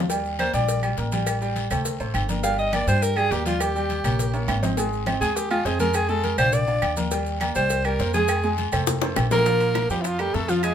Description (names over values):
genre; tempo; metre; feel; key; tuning
Afro-Cuban jazz; 205 BPM; 4/4; straight; Eb major; A4 = 444 Hz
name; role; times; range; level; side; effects
warm grand piano; accompaniment; 0.0-10.7 s; F3 to Ab5; -27 LUFS; right 1 dB; none
upright bass; bass; 0.0-10.7 s; G1 to G2; -27 LUFS; equal; none
bongos and cowbell; percussion; 0.0-10.7 s; none; -32 LUFS; left 8 dB; none
agogo bells and timbales; percussion; 0.1-10.7 s; none; -31 LUFS; right 1 dB; none
congas; percussion; 0.1-10.7 s; none; -32 LUFS; left 2 dB; none
guiro; percussion; 0.1-10.7 s; none; -38 LUFS; left 6 dB; none
maracas; percussion; 0.1-10.7 s; none; -36 LUFS; right 4 dB; none
clear alto saxophone; melody; 0.4-10.7 s; E4 to F5; -24 LUFS; right 1 dB; none
claves; percussion; 0.4-10.7 s; none; -34 LUFS; right 6 dB; none
bright tenor saxophone; second line; 9.3-10.7 s; E3 to Bb3; -30 LUFS; left 4 dB; none
room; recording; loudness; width
moderate studio ambience, RT60 0.5 s; minimal, uncompressed stereo recording; -20 LUFS; side -9 dB against mid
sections
0.1-9.5 A section; 9.5-10.7 B section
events
alto saxophone solo 0.0-9.5; drum fill 4.3-4.8, 8.9-9.5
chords
0.1 Ebmaj7; 1.3 Am7; 1.9 D5; 2.4 Gm; 3.6 Eb7; 4.8 Ab; 5.9 Fm; 6.5 Bb; 7.1 Ebmaj7; 7.7 C7sus4; 8.3 Fm; 8.9 F; 9.5 Bb5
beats
| 0.10 0.39 0.68 0.97 | 1.27 1.56 1.85 2.15 | 2.44 2.73 3.02 3.31 | 3.61 3.90 4.19 4.48 | 4.78 5.07 5.36 5.65 | 5.95 6.24 6.53 6.82 | 7.12 7.41 7.70 7.99 | 8.29 8.58 8.87 9.17 | 9.46 9.75 10.05 10.34 | 10.63